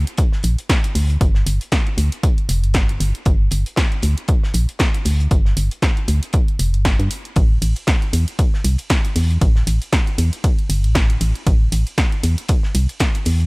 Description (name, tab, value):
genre	deep house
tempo	117 BPM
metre	4/4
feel	swing 57% on 16ths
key	G dorian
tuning	A4 = 437 Hz
part	organ-like FM bass	bass	0.0-13.5 s	F1 to G2	-17 LUFS	equal	sidechain pumping
part	punchy analog drum machine	drums	0.1-13.4 s	hi-hat, ride cymbal, snare drum	-24 LUFS	equal	none
part	cloth-damped thuddy drum kit	drums	0.2-13.5 s	hi-hat, snare drum	-35 LUFS	left 1 dB	none
part	electronic kick drum	drums	0.2-13.1 s	none	-17 LUFS	equal	none
room	studio ambience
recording	none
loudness	-15 LUFS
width	side -28 dB against mid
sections	0.0-13.5 A section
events	none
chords	none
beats	0.18 0.70 | 1.21 1.72 2.23 2.75 | 3.26 3.77 4.29 4.80 | 5.31 5.83 6.34 6.85 | 7.36 7.88 8.39 8.90 | 9.41 9.93 10.44 10.95 | 11.47 11.98 12.49 13.00